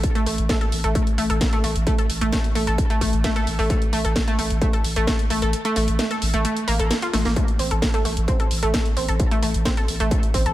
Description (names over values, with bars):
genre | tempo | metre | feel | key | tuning
driving peak-time techno | 131 BPM | 4/4 | straight | A minor | A4 = 440 Hz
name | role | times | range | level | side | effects
saturated sub bass | bass | 0.0-10.5 s | A1 | -24 LUFS | equal | overdrive, sidechain pumping, low-pass filter
electronic kick drum | drums | 0.0-10.4 s | none | -22 LUFS | equal | distortion
techno drum kit | drums | 0.0-10.5 s | hi-hat, snare drum | -27 LUFS | equal | none
analog pluck | riff | 0.2-10.5 s | A3 to A4 | -24 LUFS | equal | chorus, tube saturation, sidechain pumping, dub echo
room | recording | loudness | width
light reverb, digital ambience | none | -19 LUFS | side -15 dB against mid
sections
0.0-10.5 A section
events
kick drops out 5.5-7.4; drum fill 7.1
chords
none